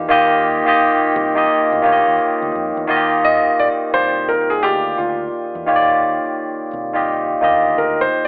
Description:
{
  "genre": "R&B",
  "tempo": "86 BPM",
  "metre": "4/4",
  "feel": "swing 63% on 16ths",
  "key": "Eb major",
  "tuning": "A4 = 442 Hz",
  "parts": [
    { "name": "warm grand piano", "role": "melody", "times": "0.0-8.3 s", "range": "F4 to Eb5", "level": "-17 LUFS", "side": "equal", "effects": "none" },
    { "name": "barky tine electric piano", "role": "accompaniment", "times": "0.0-8.3 s", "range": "Eb3 to F5", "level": "-15 LUFS", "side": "equal", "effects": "overdrive, wide subtle chorus" },
    { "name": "hollow soft pad", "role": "sustained chords", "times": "0.0-2.8 s", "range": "Bb3 to G4", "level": "-33 LUFS", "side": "equal", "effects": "none" },
    { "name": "deep dub fingered electric bass", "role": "bass", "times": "0.0-8.1 s", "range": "C2 to F2", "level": "-33 LUFS", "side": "equal", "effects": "none" }
  ],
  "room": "wet spring reverb, RT60 1.7 s, digital ambience",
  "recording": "echo-heavy mix, telephone sound",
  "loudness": "-14 LUFS",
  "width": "side -38 dB against mid",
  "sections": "0.0-2.9 A section; 2.9-8.3 B section",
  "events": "grand piano solo 2.9-8.3",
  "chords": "0.0 Ebmaj9"
}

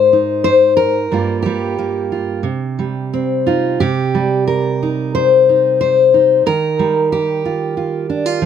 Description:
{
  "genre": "folk, solo fingerstyle acoustic guitar",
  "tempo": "90 BPM",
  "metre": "4/4",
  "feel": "rubato",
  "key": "C minor",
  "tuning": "A4 = 440 Hz",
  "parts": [
    { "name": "fingerpicked steel-string acoustic guitar", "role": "solo", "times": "0.0-8.5 s", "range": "G2 to C5", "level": "-13 LUFS", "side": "left 1 dB", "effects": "none" }
  ],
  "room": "little or no reverb",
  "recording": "close, detailed microphones",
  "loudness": "-13 LUFS",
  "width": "side -8 dB against mid",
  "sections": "0.0-3.8 A section; 3.8-8.5 A section",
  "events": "none",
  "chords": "0.0 Ab; 1.1 Gm7; 2.4 Cm; 6.5 Ebadd9"
}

